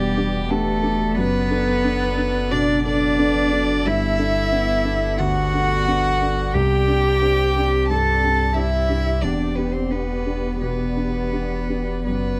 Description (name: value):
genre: neoclassical piano and strings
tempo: 89 BPM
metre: 4/4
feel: rubato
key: unclear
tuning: A4 = 439 Hz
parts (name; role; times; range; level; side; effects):
- rich violin; melody; 0.0-12.4 s; G4 to A5; -28 LUFS; equal; none
- warm cello; second line; 0.0-12.4 s; G3 to A4; -24 LUFS; equal; none
- dark grand piano; accompaniment; 0.0-12.4 s; C2 to A4; -27 LUFS; equal; none
- warbly tape-like pad; sustained chords; 0.0-12.4 s; B3 to D5; -35 LUFS; equal; chorus, built-in reverb
- saturated sub bass; bass; 0.0-12.4 s; E1 to C2; -28 LUFS; equal; none
room: little or no reverb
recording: close, detailed microphones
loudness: -20 LUFS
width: mono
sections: 0.0-12.4 A section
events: none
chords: 0.0 Em7; 1.2 Bm7/F#; 3.9 Gadd9; 6.5 Csus2; 9.2 Em7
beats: 0.49 | 1.16 1.84 2.51 3.18 | 3.85 4.51 5.19 5.86 | 6.53 7.21 7.89 8.56 | 9.23 9.92 10.61 11.32 | 12.06